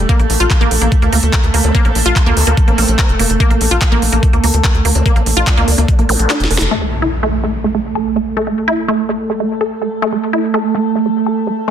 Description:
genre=psychedelic trance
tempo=145 BPM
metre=4/4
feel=straight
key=A phrygian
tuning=A4 = 443 Hz
part: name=evolving wavetable pad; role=sustained chords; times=0.0-11.7 s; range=A3 to A4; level=-20 LUFS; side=right 3 dB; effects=chorus, built-in reverb, sidechain pumping
part: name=tight sequencer bass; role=bass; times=0.0-6.7 s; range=F1 to D2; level=-14 LUFS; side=equal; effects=none
part: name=wide unison pluck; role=riff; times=0.1-11.7 s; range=A3 to Bb4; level=-18 LUFS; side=right 1 dB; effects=auto-pan, sidechain pumping, dub echo
part: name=electronic kick drum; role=drums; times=0.1-6.0 s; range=none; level=-13 LUFS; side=equal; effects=overdrive
part: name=techno drum kit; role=drums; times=0.1-6.7 s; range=handclaps, hi-hat, snare drum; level=-18 LUFS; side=right 1 dB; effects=none
part: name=vowel-sweep wobble bass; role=second line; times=1.6-5.9 s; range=A3 to D4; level=-28 LUFS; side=right 3 dB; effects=analog chorus, sidechain pumping, high-pass filter, digital delay
part: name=zap and impact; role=sound effects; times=6.1-8.4 s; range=none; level=-22 LUFS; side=equal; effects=none
room=light reverb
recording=dense, heavily limited modern master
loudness=-11 LUFS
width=side -9 dB against mid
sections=0.0-6.7 A section; 6.7-11.7 B section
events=kick drops out 6.3-6.7; drum fill 6.3-6.7; band accent 6.6; impact 6.7-8.4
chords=0.1 Bb5; 6.7 A5

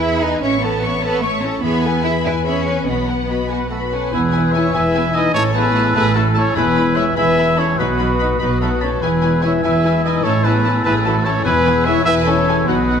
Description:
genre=cinematic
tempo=98 BPM (dotted quarters)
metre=6/8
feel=straight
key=unclear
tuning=A4 = 439 Hz
part: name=warm symphonic violin section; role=melody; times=0.0-13.0 s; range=F#5 to C#6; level=-27 LUFS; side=left 2 dB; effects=none
part: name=warm symphonic violin section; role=second line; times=0.0-13.0 s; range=F#4 to G#5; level=-26 LUFS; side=left 2 dB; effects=none
part: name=rich studio viola section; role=accompaniment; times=0.0-13.0 s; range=E3 to C#5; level=-26 LUFS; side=equal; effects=none
part: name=concert harp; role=arpeggios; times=0.0-13.0 s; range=A2 to G#5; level=-24 LUFS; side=left 8 dB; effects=none
part: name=dark symphonic double bass section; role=bass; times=0.0-13.0 s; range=E1 to E2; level=-23 LUFS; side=right 2 dB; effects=none
part: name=warm symphonic cello section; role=bass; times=0.0-13.0 s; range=E2 to E4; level=-21 LUFS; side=right 2 dB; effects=none
part: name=mellow French horn section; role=sustained chords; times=3.5-13.0 s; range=A3 to E4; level=-23 LUFS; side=left 4 dB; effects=none
part: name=clear trumpet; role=stabs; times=3.5-13.0 s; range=A4 to E5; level=-20 LUFS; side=right 2 dB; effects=none
part: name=small flute group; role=second line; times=4.1-13.0 s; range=D#6 to E6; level=-26 LUFS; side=left 4 dB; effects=none
part: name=warm clarinet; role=second line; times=4.1-13.0 s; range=E4 to F#4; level=-27 LUFS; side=left 1 dB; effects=none
part: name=warm oboe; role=second line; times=4.1-13.0 s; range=D#5 to A5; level=-27 LUFS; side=right 1 dB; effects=none
room=wet scoring stage reverb, RT60 1.5 s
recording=none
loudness=-14 LUFS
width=side -7 dB against mid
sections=0.0-4.1 A section; 4.1-13.0 A section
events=none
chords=0.4 A; 1.6 E; 2.9 B; 4.1 E; 5.3 A5; 6.6 E; 7.8 B; 9.0 E; 10.2 A5; 11.5 E

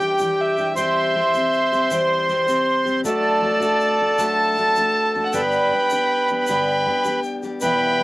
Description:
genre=acoustic folk duo or small band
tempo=52 BPM (dotted quarters)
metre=6/8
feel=straight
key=unclear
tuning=A4 = 440 Hz
part: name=dark fiddle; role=melody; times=0.0-8.0 s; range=C5 to A5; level=-22 LUFS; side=left 1 dB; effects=cassette tape
part: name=accordion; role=second line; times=0.0-8.0 s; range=G4 to C5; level=-20 LUFS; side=right 2 dB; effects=cassette tape
part: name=picked steel-string acoustic guitar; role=accompaniment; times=0.0-8.0 s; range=E2 to G4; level=-26 LUFS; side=left 2 dB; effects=cassette tape
part: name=egg shaker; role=percussion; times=0.0-7.8 s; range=none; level=-38 LUFS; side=left 4 dB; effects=none
room=light reverb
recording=home recording on cassette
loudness=-17 LUFS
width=side -19 dB against mid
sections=0.0-8.0 A section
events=none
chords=0.0 Em7; 0.8 C/E; 3.1 D/F#; 5.3 G

